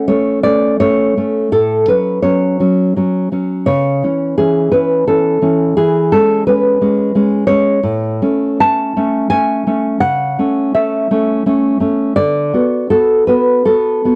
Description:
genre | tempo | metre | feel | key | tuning
romantic piece for solo classical guitar | 71-90 BPM | 3/4 | rubato | A major from 7.8 s | A4 = 440 Hz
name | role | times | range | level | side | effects
nylon-string guitar | solo | 0.0-14.2 s | A2 to A5 | -14 LUFS | equal | none
room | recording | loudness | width
little or no reverb | dry, close 1970s-style studio recording | -14 LUFS | mono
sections
0.0-14.2 A section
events
none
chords
0.0 F#m (rootless); 1.5 F#m/A; 3.7 C#m; 5.8 C#m/E; 7.8 A; 10.0 A/C#; 12.2 Bm/D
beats
0.09 0.81 | 1.52 2.24 2.96 | 3.68 4.38 5.08 | 5.77 6.46 7.14 | 7.82 8.59 9.29 | 10.00 10.73 11.44 | 12.15 12.89 13.65

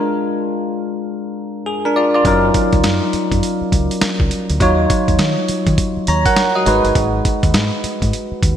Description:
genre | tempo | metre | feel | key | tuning
R&B, new jack swing | 102 BPM | 4/4 | swing 62% on 16ths | F# major | A4 = 442 Hz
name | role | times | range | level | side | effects
bell-like tine electric piano | accompaniment | 0.0-8.6 s | F#3 to A#5 | -16 LUFS | equal | wide subtle chorus
deep dub fingered electric bass | bass | 2.2-8.6 s | F#1 to D#3 | -19 LUFS | equal | none
dusty soul sampler-style drum kit | drums | 2.2-8.6 s | hi-hat, kick drum, snare drum | -18 LUFS | equal | none
room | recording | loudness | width
wet lush hall reverb, RT60 2.0 s | bright 1980s-style digital production | -14 LUFS | side -9 dB against mid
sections
0.0-8.6 A section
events
none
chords
0.0 A#7; 2.2 F#6; 4.6 D#m9; 6.7 G#m7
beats
0.48 1.07 1.66 | 2.25 2.83 3.42 4.01 | 4.60 5.19 5.78 6.37 | 6.95 7.54 8.13

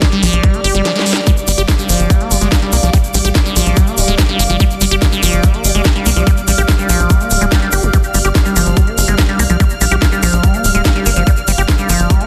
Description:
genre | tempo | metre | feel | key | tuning
psychedelic trance | 144 BPM | 4/4 | straight | G minor | A4 = 440 Hz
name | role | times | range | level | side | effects
overtone-sweeping drone | sustained chords | 0.0-12.3 s | D5 to F5 | -25 LUFS | equal | chorus, built-in reverb, sidechain pumping
liquid acid bass | riff | 0.0-12.3 s | F3 to G4 | -20 LUFS | equal | phaser, cassette tape, sidechain pumping, tape echo
electronic kick drum | drums | 0.0-12.2 s | none | -15 LUFS | equal | none
garage drum kit | drums | 0.0-12.3 s | hi-hat, snare drum | -21 LUFS | equal | none
warm studio string section | texture | 0.0-12.3 s | G3 to F6 | -25 LUFS | equal | sidechain pumping
tight sequencer bass | bass | 0.2-12.1 s | D1 to C2 | -17 LUFS | equal | none
swell | sound effects | 0.5-1.3 s | none | -30 LUFS | equal | none
tube shaker | percussion | 1.3-12.2 s | none | -27 LUFS | equal | none
room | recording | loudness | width
light reverb, digital ambience | dense, heavily limited modern master | -13 LUFS | mono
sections
0.0-12.3 A section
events
kick drops out 0.9-1.3; drum fill 0.9-1.3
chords
0.0 G5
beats
0.02 0.43 0.85 | 1.27 1.69 2.10 2.52 | 2.94 3.35 3.77 4.18 | 4.60 5.02 5.43 5.85 | 6.27 6.68 7.10 7.52 | 7.93 8.35 8.77 9.19 | 9.60 10.02 10.44 10.85 | 11.27 11.69 12.10

